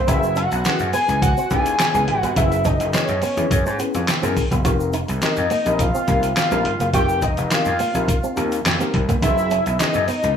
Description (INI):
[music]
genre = early-eighties boogie funk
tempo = 105 BPM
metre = 4/4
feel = straight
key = unclear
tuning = A4 = 441 Hz
[part]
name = fat analog lead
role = melody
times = 0.0-10.4 s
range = Db5 to Ab5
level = -21 LUFS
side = equal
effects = slapback echo
[part]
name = electric guitar with an envelope filter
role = riff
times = 0.0-10.2 s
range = Bb3 to F4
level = -28 LUFS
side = right 4 dB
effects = ensemble chorus
[part]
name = gritty slap bass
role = bass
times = 0.0-10.4 s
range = F1 to Ab2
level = -23 LUFS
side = equal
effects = overdrive
[part]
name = tine electric piano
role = accompaniment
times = 0.1-10.4 s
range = C4 to Cb5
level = -26 LUFS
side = left 4 dB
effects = overdrive, slow stereo tremolo
[part]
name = lo-fi sampler-style drum kit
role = drums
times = 0.1-10.4 s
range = handclaps, hi-hat, kick drum, snare drum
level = -22 LUFS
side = equal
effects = none
[part]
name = tube shaker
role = percussion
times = 0.1-10.4 s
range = none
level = -38 LUFS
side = left 2 dB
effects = none
[sound]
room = moderate digital room reverb, RT60 1.2 s, digital ambience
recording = rough home demo mix, small room ambience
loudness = -17 LUFS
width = side -8 dB against mid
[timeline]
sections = 0.0-10.4 A section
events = none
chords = 0.1 Gb9sus4; 4.7 F9sus4; 9.2 Gb9sus4